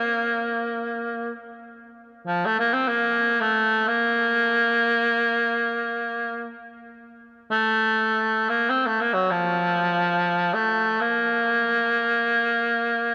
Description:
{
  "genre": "caucasian folk",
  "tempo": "free time",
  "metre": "none",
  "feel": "none",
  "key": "unclear",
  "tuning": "A4 = 440 Hz",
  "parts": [
    { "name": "warm cor anglais", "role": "solo", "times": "0.0-13.1 s", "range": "F3 to C4", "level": "-23 LUFS", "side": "equal", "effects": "none" }
  ],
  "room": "moderate cathedral reverb, RT60 5.0 s",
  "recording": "dark, warm production",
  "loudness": "-23 LUFS",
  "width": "mono",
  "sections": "0.0-13.1 A section",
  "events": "none",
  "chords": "none"
}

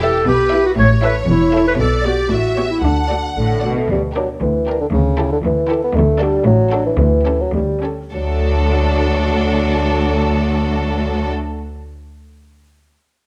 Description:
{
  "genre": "cinematic, playful, whimsical film cue",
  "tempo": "99-121 BPM",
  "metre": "2/4",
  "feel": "straight",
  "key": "D major",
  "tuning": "A4 = 440 Hz",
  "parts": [
    { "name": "rich studio violin section", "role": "melody", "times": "0.0-11.3 s", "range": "A4 to E5", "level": "-28 LUFS", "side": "equal", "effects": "none" },
    { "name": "rich studio violin section", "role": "second line", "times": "0.0-11.3 s", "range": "F#4 to F#5", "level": "-29 LUFS", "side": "equal", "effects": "none" },
    { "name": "warm clarinet", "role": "second line", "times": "0.0-3.4 s", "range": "D4 to C#5", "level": "-19 LUFS", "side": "equal", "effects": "none" },
    { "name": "rich chamber viola section", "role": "accompaniment", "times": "0.0-11.3 s", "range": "A3 to A4", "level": "-28 LUFS", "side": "equal", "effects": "none" },
    { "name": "rich studio double bass section", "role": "bass", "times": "0.0-11.3 s", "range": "E1 to D2", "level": "-22 LUFS", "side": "equal", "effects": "none" },
    { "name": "warm studio cello section", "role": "bass", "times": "0.0-11.3 s", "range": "D2 to D3", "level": "-24 LUFS", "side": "equal", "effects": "none" },
    { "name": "dark bassoon", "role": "accompaniment", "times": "3.4-11.3 s", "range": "C#3 to B3", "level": "-22 LUFS", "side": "equal", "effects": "none" }
  ],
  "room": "moderate recital hall reverb, RT60 1.4 s",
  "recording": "close, detailed microphones",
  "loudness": "-16 LUFS",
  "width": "mono",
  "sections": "0.0-3.9 A section; 3.9-8.1 B section; 8.1-10.5 C section",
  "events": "slowing down 5.4-8.1",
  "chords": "0.0 Em; 0.8 A; 1.8 Bm7; 2.3 A9; 2.8 D; 3.9 Gm/D; 4.9 A5/D; 5.9 D; 7.0 A7/D; 8.1 D"
}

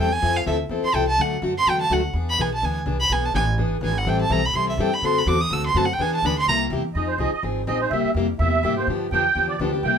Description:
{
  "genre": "acoustic string swing (jazz manouche)",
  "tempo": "249 BPM",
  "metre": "4/4",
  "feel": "swing 55% on 8ths",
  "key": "unclear",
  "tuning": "A4 = 438 Hz",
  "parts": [
    { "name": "rich violin", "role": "melody", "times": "0.0-6.6 s", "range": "E5 to E6", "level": "-22 LUFS", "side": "right 2 dB", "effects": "none" },
    { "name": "picked plugged-in steel-string acoustic guitar", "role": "accompaniment", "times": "0.0-10.0 s", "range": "C3 to A4", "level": "-24 LUFS", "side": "left 3 dB", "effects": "none" },
    { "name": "upright bass", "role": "bass", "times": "0.0-10.0 s", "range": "G#1 to Ab2", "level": "-26 LUFS", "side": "equal", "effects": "none" },
    { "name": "musette accordion", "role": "second line", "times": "6.9-10.0 s", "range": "C5 to G5", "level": "-22 LUFS", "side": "right 5 dB", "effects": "none" }
  ],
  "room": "moderate studio reverb, RT60 0.6 s",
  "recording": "minimal, uncompressed stereo recording",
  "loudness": "-19 LUFS",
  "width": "side -7 dB against mid",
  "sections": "0.0-7.0 A section; 7.0-10.0 A section",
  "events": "violin solo 0.0-7.0; accordion solo 7.0-10.0",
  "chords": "0.2 Fmaj7; 1.2 D; 2.1 E7; 4.1 Am7; 5.0 D7; 6.0 E7; 6.5 C7; 7.0 Fm7; 7.9 C7; 8.9 G7"
}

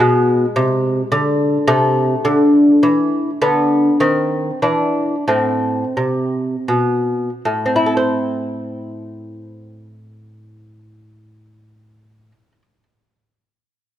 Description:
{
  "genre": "classical, baroque-style dance for lute",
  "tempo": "78-107 BPM",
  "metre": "3/4",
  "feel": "rubato",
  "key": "A minor",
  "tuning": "A4 = 436 Hz",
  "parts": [
    { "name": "lute", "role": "solo", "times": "0.0-12.8 s", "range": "A2 to C5", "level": "-14 LUFS", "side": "equal", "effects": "none" }
  ],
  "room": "light reverb",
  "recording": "close, detailed microphones",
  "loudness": "-14 LUFS",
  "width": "side -11 dB against mid",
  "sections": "0.0-7.5 A section; 7.5-12.0 B section",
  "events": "slowing down 2.5-7.5",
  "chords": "0.0 Bm6; 1.7 Am/C; 3.4 Bm/D; 4.0 Cm/Eb; 4.6 Dsus2/E; 5.3 Am"
}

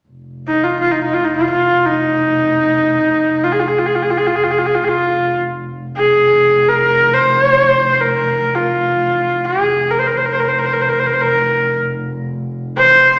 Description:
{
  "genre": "mongolian traditional",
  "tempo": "free time",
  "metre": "none",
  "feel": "none",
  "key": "F yu mode",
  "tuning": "A4 = 441 Hz",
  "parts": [
    { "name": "dark double bass", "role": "drone", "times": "0.1-13.2 s", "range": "F1", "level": "-27 LUFS", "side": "equal", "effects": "none" },
    { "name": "bright horsehead fiddle", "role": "melody", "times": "0.5-13.2 s", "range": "Eb4 to C5", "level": "-15 LUFS", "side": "equal", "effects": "none" }
  ],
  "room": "wet large studio reverb, RT60 1.3 s",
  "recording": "none",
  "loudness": "-15 LUFS",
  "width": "mono",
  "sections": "0.1-13.2 A section",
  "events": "none",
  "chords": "none"
}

